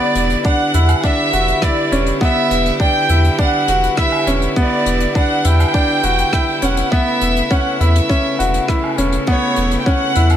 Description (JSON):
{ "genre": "piano and strings electronica", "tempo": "102 BPM", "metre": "4/4", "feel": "straight", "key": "E dorian", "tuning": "A4 = 440 Hz", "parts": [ { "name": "warm chamber violin section", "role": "melody", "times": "0.0-10.4 s", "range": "C#5 to G5", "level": "-18 LUFS", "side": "right 2 dB", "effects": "none" }, { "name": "rich string quartet", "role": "sustained chords", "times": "0.0-10.4 s", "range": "C#3 to E4", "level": "-23 LUFS", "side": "equal", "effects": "sidechain pumping" }, { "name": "bright baby grand piano", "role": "riff", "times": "0.0-10.4 s", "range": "B3 to F#4", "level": "-19 LUFS", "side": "equal", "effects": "ping-pong delay" }, { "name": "warm sub bass", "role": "bass", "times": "0.1-10.4 s", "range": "E1 to E2", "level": "-16 LUFS", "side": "equal", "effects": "sidechain pumping" }, { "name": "soft brush drum kit", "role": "drums", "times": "0.2-10.4 s", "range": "hi-hat, rim click, woodblock", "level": "-28 LUFS", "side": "left 3 dB", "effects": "none" }, { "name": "electronic kick drum", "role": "drums", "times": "0.4-10.0 s", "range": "none", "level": "-17 LUFS", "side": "equal", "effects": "none" } ], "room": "light reverb", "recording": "none", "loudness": "-13 LUFS", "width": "side -10 dB against mid", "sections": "0.0-10.4 A section", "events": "none", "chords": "0.0 Em7; 6.9 Aadd9/E", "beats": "0.45 1.04 1.62 | 2.21 2.80 3.39 3.98 | 4.57 5.15 5.74 6.33 | 6.92 7.51 8.10 8.68 | 9.27 9.86" }